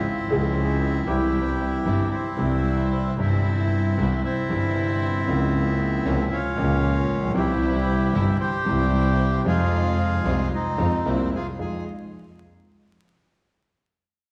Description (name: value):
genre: tango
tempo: 115 BPM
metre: 4/4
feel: rubato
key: F harmonic minor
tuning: A4 = 440 Hz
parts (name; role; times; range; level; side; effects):
- bandoneon; melody; 0.0-11.8 s; C4 to C5; -29 LUFS; equal; none
- warm concert grand piano; accompaniment; 0.3-11.8 s; G1 to Ab4; -27 LUFS; equal; none
- warm studio string section; stabs; 0.3-11.8 s; Db3 to F4; -35 LUFS; equal; none
- clear double bass; bass; 0.3-11.8 s; G1 to F2; -28 LUFS; equal; none
room: wet recital hall reverb, RT60 1.7 s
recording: heard from further back in the room, vinyl crackle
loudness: -23 LUFS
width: mono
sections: 0.0-11.6 A section; 11.6-13.7 B section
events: none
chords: 0.0 Db; 1.1 C; 5.3 Bbmadd9/Db; 7.4 C; 9.5 Fm7; 11.1 C7; 11.6 Fm7